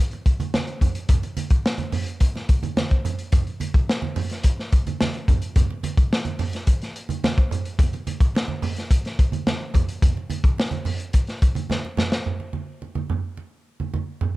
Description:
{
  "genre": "funk",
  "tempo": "108 BPM",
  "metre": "4/4",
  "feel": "straight",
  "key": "none",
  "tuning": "none",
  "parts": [
    { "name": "crunchy breakbeat drum kit", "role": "drums", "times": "0.1-12.2 s", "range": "hi-hat, kick drum, snare drum", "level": "-20 LUFS", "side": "equal", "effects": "none" },
    { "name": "congas", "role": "percussion", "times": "0.1-14.3 s", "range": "none", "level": "-27 LUFS", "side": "right 4 dB", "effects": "none" }
  ],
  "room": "little or no reverb",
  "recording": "dark, warm production",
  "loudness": "-20 LUFS",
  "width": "side -18 dB against mid",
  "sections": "0.0-12.3 A section; 12.3-14.4 B section",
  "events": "drum fill 11.7-12.3",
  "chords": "none",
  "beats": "0.53 | 1.09 1.65 2.21 2.77 | 3.33 3.88 4.44 5.00 | 5.56 6.12 6.67 7.23 | 7.79 8.35 8.90 9.46 | 10.02 10.58 11.14 11.69 | 12.25 12.81 13.37 13.93"
}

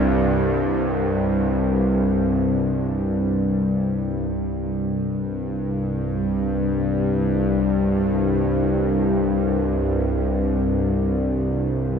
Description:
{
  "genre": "ambient",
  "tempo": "free time",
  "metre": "none",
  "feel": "none",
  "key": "unclear",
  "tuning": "A4 = 440 Hz",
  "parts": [
    { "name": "bowed-like drone", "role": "solo", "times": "0.0-12.0 s", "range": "C2 to G2", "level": "-19 LUFS", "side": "equal", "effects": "built-in reverb" }
  ],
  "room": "wet cathedral reverb, RT60 5.7 s",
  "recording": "none",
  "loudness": "-19 LUFS",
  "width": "side -6 dB against mid",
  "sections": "0.0-4.3 A section; 4.3-12.0 B section",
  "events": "none",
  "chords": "0.0 C5",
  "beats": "free time"
}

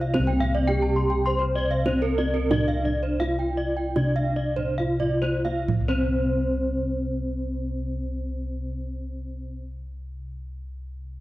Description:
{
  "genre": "Balinese gamelan",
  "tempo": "63-115 BPM",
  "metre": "4/4",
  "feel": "straight",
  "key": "C slendro",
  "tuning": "A4 = 440 Hz",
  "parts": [
    { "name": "gamelan-type bronze metallophone", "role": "melody", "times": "0.0-9.6 s", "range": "C4 to C5", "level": "-28 LUFS", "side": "equal", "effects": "none" },
    { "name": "gamelan-type bronze metallophone", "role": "arpeggios", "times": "0.0-9.6 s", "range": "Bb4-45c to Bb5-45c", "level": "-32 LUFS", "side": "right 4 dB", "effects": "none" },
    { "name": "gamelan-type bossed gongs", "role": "bass", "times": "0.0-9.5 s", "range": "C2 to D4+30c", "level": "-27 LUFS", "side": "equal", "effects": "transformer saturation" },
    { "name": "kendang", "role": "percussion", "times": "0.0-6.1 s", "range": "none", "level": "-31 LUFS", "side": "right 3 dB", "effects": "none" },
    { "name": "gamelan-type bronze metallophone", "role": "arpeggios", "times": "0.1-9.6 s", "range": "C5 to C6", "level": "-31 LUFS", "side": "left 2 dB", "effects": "none" }
  ],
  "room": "moderate scoring stage reverb, RT60 1.8 s",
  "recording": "worn, warbling old tape, cassette tape, warbly pitch drift",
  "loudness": "-22 LUFS",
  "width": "side -17 dB against mid",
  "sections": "0.0-5.7 A section; 5.7-11.2 B section",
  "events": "slowing down 0.1-5.7; drum fill 4.6-5.7",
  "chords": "none",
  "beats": "| 0.14 0.68 1.25 1.86 | 2.51 3.21 3.96 4.79 | 5.69 6.64 7.59 8.54 | 9.48"
}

